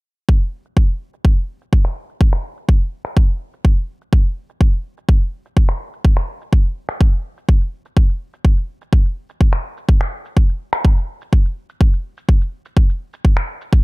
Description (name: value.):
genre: house.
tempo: 125 BPM.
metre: 4/4.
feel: straight.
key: none.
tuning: none.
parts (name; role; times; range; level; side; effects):
electronic kick drum; drums; 0.3-13.8 s; none; -13 LUFS; equal; none.
electronic shaker and finger snaps; drums; 0.3-13.8 s; none; -26 LUFS; equal; low-pass filter on perc, low-pass filter on snare.
room: digital ambience.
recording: none.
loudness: -15 LUFS.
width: side -25 dB against mid.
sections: 0.3-13.8 A section.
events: none.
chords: none.